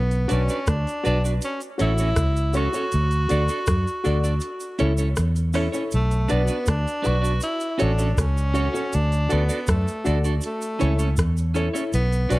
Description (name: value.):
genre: roots reggae.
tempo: 80 BPM.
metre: 4/4.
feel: straight.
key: B minor.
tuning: A4 = 440 Hz.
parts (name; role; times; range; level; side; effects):
bright tenor saxophone; melody; 0.0-12.4 s; A3 to F#4; -27 LUFS; equal; dub echo.
vintage muted fingered electric bass; bass; 0.0-12.4 s; A1 to F#2; -21 LUFS; equal; none.
soft vintage rhythm box; drums; 0.1-12.4 s; hi-hat, kick drum, rim click; -25 LUFS; equal; none.
cabasa; percussion; 0.1-12.4 s; none; -39 LUFS; right 4 dB; none.
clean electric guitar; accompaniment; 0.3-12.4 s; C#4 to D5; -29 LUFS; right 4 dB; spring reverb, dub echo.
dark upright piano; stabs; 0.3-12.4 s; E4 to D5; -29 LUFS; left 3 dB; none.
room: studio ambience.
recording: dry, close 1970s-style studio recording.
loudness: -20 LUFS.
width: side -19 dB against mid.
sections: 0.0-12.4 A section.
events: kick muted 4.4-5.9.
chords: 0.0 Bm; 1.4 F#m; 2.9 D; 4.4 A; 5.9 Bm; 7.4 F#m; 8.9 D; 10.4 A.